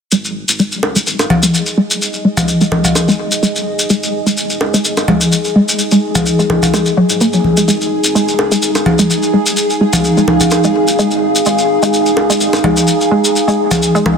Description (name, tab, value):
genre	minimal techno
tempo	127 BPM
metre	4/4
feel	swing 54% on 16ths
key	unclear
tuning	A4 = 440 Hz
part	resonant blip pluck	riff	0.1-14.0 s	F#3 to A#3	-16 LUFS	equal	lush chorus, cassette tape, dub echo
part	round analog bass	bass	0.1-14.2 s	D#1 to G#2	-30 LUFS	equal	high-pass filter
part	shekere	percussion	0.1-14.0 s	none	-17 LUFS	left 1 dB	none
part	swarming drone	texture	1.2-14.2 s	G#4	-22 LUFS	right 3 dB	built-in reverb
part	warbly tape-like pad	texture	0.8-14.2 s	D#4 to E#5	-17 LUFS	equal	chorus, built-in reverb
part	bongos, cowbell and congas	percussion	0.8-14.2 s	none	-14 LUFS	left 2 dB	ping-pong delay
room	moderate lush hall reverb, RT60 2.0 s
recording	dense, heavily limited modern master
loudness	-11 LUFS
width	side -6 dB against mid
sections	0.1-14.2 A section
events	filter sweep on synth arpeggio sound 0.1-14.2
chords	0.1 G#5